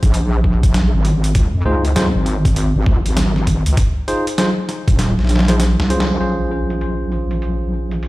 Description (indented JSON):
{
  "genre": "glitch hop",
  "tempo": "99 BPM",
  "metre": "4/4",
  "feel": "swing 63% on 16ths",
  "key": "Bb minor",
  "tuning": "A4 = 440 Hz",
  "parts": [
    { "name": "wobble bass", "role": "bass", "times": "0.0-8.1 s", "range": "Eb1 to F2", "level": "-16 LUFS", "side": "equal", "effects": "chorus, tube saturation" },
    { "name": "boom bap sampler-style drum kit", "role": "drums", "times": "0.0-8.1 s", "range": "hi-hat, snare drum", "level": "-21 LUFS", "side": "equal", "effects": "overdrive, low-pass filter on snare, low-pass filter on hats" },
    { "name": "electronic kick drum", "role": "drums", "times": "0.0-5.0 s", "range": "none", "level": "-16 LUFS", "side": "equal", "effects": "overdrive" },
    { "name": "tine electric piano", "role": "stabs", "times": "1.7-8.1 s", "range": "Db4 to C5", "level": "-23 LUFS", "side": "equal", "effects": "sidechain pumping, ping-pong delay" }
  ],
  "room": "light reverb, digital ambience",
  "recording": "played on a big sound system in a bare room, large studio reverb",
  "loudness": "-14 LUFS",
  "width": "side -19 dB against mid",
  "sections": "0.0-6.2 A section; 6.2-8.1 B section",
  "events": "kick drops out 5.0-6.2; drum fill 5.0-6.2; band accent 6.0-6.3",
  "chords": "0.0 Bb7(no3); 1.4 Db; 3.8 Fm7; 6.2 Bbm9"
}